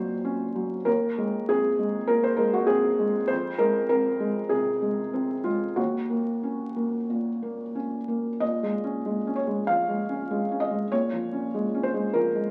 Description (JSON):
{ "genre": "neoclassical minimalist piano", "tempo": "90-101 BPM", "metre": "4/4", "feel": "rubato", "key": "unclear", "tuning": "A4 = 440 Hz", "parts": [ { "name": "felt-muted upright piano", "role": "solo", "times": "0.0-12.5 s", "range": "Eb2 to F5", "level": "-26 LUFS", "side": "equal", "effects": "none" } ], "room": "moderate large studio reverb, RT60 0.9 s", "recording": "very old 78 rpm record, vinyl crackle", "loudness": "-26 LUFS", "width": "mono", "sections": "0.0-8.4 A section; 8.4-12.5 B section", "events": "none", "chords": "0.0 Ebm7; 0.9 Abadd9/Eb; 3.3 Fm; 5.8 Ebm7; 8.4 Bbm7", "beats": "0.26 | 0.87 1.49 2.09 2.69 | 3.30 3.90 4.51 5.13 | 5.78 6.44 7.10 7.75 | 8.41 9.05 9.68 10.31 | 10.93 11.53 12.14" }